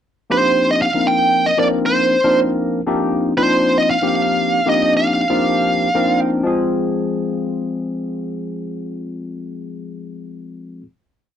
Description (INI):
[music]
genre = jazz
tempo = 78 BPM (dotted quarters)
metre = 6/8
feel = straight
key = F dorian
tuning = A4 = 439 Hz
[part]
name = bluesy overdriven lead guitar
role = melody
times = 0.3-6.2 s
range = C5 to G5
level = -16 LUFS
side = right 2 dB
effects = distortion, slapback echo
[part]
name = barky tine electric piano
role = accompaniment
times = 0.3-10.8 s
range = F3 to G5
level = -19 LUFS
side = left 2 dB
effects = overdrive, analog chorus
[sound]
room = light reverb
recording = dry, close 1970s-style studio recording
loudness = -15 LUFS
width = side -9 dB against mid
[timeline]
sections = 0.3-6.5 groove; 6.5-9.6 final chord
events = tine electric piano fill 5.7-6.5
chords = 0.3 F13sus4; 6.5 Fm